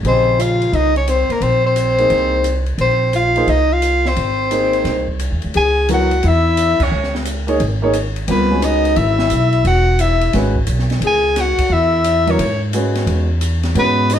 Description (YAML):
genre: modal jazz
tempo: 175 BPM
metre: 4/4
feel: swing 65% on 8ths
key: C# dorian from 5.5 s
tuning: A4 = 440 Hz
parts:
  - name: upright bass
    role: bass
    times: 0.0-14.2 s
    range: E1 to G#2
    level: -18 LUFS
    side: right 1 dB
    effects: none
  - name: open jazz drum kit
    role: drums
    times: 0.0-14.2 s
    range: crash cymbal, hi-hat, kick drum, ride cymbal, snare drum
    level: -26 LUFS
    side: left 1 dB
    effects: none
  - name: breathy soprano saxophone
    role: melody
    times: 0.1-14.2 s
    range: Bb4 to G#5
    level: -17 LUFS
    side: left 1 dB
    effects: plate reverb
  - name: mellow alto saxophone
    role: second line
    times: 0.1-14.2 s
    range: Bb3 to G#4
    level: -20 LUFS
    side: left 4 dB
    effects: none
  - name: warm grand piano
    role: accompaniment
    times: 0.1-14.2 s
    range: Db3 to Eb5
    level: -20 LUFS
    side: right 2 dB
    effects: none
room: wet studio reverb, RT60 0.6 s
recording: heard from further back in the room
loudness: -13 LUFS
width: side -9 dB against mid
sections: 0.0-5.5 A section; 5.5-14.2 B section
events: band accent 6.7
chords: 0.0 Fm/Bb; 4.2 Ab; 5.5 C#m11